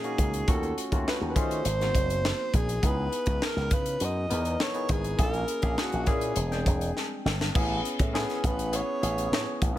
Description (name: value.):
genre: polished 1980s jazz-funk pop.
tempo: 102 BPM.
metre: 4/4.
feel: straight.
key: unclear.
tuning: A4 = 440 Hz.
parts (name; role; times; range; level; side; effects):
breathy alto saxophone; melody; 0.0-9.6 s; F#4 to D#5; -32 LUFS; right 1 dB; none.
barky tine electric piano; accompaniment; 0.0-9.8 s; A#2 to G5; -33 LUFS; left 1 dB; overdrive, analog chorus.
crisp fusion drum kit; drums; 0.0-9.8 s; crash cymbal, hi-hat, kick drum, snare drum; -28 LUFS; equal; none.
slap bass with an envelope filter; bass; 0.2-9.8 s; E1 to D#3; -30 LUFS; equal; none.
room: small room ambience.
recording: none.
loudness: -25 LUFS.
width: side -13 dB against mid.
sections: 0.0-7.5 A section; 7.5-9.8 B section.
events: drum fill 7.0-7.5.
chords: 0.5 D#m7b5; 1.7 G#7; 2.8 C#m9; 5.2 A#m7b5; 6.4 E7alt; 7.5 Amaj9.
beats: | 0.48 1.06 1.65 2.24 | 2.83 3.42 4.01 4.60 | 5.19 5.78 6.37 6.96 | 7.55 8.14 8.73 9.32.